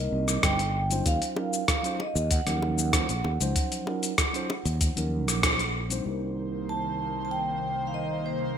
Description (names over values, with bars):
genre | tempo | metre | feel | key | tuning
sunset chillout | 96 BPM | 4/4 | straight | unclear | A4 = 442 Hz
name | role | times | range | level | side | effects
vibraphone with medium mallets | melody | 0.0-8.4 s | C5 to A5 | -32 LUFS | right 2 dB | digital delay
mellow tine electric piano | accompaniment | 0.0-8.6 s | F3 to C5 | -33 LUFS | moving between left 3 dB and right 5 dB | auto-pan, low-pass filter, digital delay
sustaining fretless electric bass | bass | 0.0-8.6 s | G1 to Eb2 | -30 LUFS | equal | none
dusty soul sampler-style drum kit | drums | 0.3-6.0 s | hi-hat, rim click, shaker | -28 LUFS | left 1 dB | gated reverb
electronic kick drum | drums | 0.4-5.6 s | none | -28 LUFS | equal | overdrive
bongos | percussion | 1.4-4.6 s | none | -39 LUFS | left 2 dB | none
airy breathy pad | sustained chords | 6.1-8.6 s | C3 to C5 | -34 LUFS | equal | chorus
room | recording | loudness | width
moderate plate reverb, RT60 1.6 s | bright 1980s-style digital production | -25 LUFS | side -8 dB against mid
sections
0.0-6.1 A section; 6.1-8.6 B section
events
band accent 5.4-5.7; filter sweep on tine electric piano 6.1-8.6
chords
0.0 Cm9; 1.1 Ebm9; 6.1 Cm7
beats
0.43 | 1.06 1.69 2.31 2.94 | 3.56 4.18 4.81 5.43 | 6.06 6.68 7.31 7.93 | 8.56